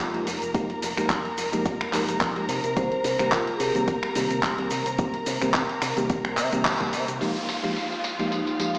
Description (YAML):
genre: nu-disco, nu disco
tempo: 108 BPM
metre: 4/4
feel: swing 55% on 16ths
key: F minor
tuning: A4 = 438 Hz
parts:
  - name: vibraphone with medium hard mallets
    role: melody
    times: 0.0-4.4, 8.3-8.8 s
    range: Eb4 to C5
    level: -29 LUFS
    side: equal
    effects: analog delay
  - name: bell-like tine electric piano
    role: accompaniment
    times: 0.0-8.8 s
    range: Eb3 to G4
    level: -29 LUFS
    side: equal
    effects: analog delay
  - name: dark studio string section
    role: sustained chords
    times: 0.0-8.8 s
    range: F4 to Bb5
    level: -30 LUFS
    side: equal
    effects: sidechain pumping
  - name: fingered electric bass with an envelope filter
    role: bass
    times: 0.0-7.2 s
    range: F1 to C3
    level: -33 LUFS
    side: equal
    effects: none
  - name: tube shaker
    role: percussion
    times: 0.0-7.2 s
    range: none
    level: -41 LUFS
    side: equal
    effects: none
  - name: dusty soul sampler-style drum kit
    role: drums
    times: 0.1-8.8 s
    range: finger snaps, handclaps, hi-hat, tambourine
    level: -28 LUFS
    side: equal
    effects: low-pass filter on hats, low-pass filter on snare, low-pass filter on perc, low-pass filter on room
  - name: electronic kick drum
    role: drums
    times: 0.5-6.9 s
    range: none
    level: -28 LUFS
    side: equal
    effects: overdrive
  - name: downlifter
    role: sound effects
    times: 7.2-8.8 s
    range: none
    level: -32 LUFS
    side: equal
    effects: none
room: wet lush hall reverb, RT60 1.7 s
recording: played on a big sound system in a bare room, stone room reverb, small speaker sound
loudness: -23 LUFS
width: side -36 dB against mid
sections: 0.0-7.2 A section; 7.2-8.8 B section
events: band accent 6.7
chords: 0.0 Fm11; 2.5 Cm7; 7.2 Fm11